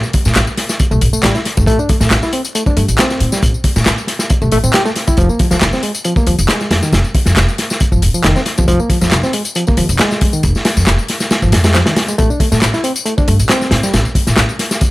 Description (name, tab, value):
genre	breakbeat, breaks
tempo	137 BPM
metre	4/4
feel	swing 54% on 16ths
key	unclear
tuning	A4 = 439 Hz
part	house drum kit	drums	0.0-14.9 s	handclaps, hi-hat, tambourine	-20 LUFS	left 2 dB	overdrive
part	crunchy breakbeat drum kit	drums	0.1-14.9 s	hi-hat, kick drum, snare drum	-15 LUFS	equal	none
part	upright bass	bass	0.3-14.5 s	F1 to A2	-15 LUFS	equal	none
part	barky reed electric piano	riff	0.9-13.9 s	Eb3 to G4	-18 LUFS	equal	tube saturation, vintage 12-bit sampler grit, tape echo
room	small room reverb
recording	vinyl crackle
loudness	-11 LUFS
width	side -18 dB against mid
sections	0.0-14.9 A section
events	none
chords	0.0 Am; 5.2 Fm; 12.2 Am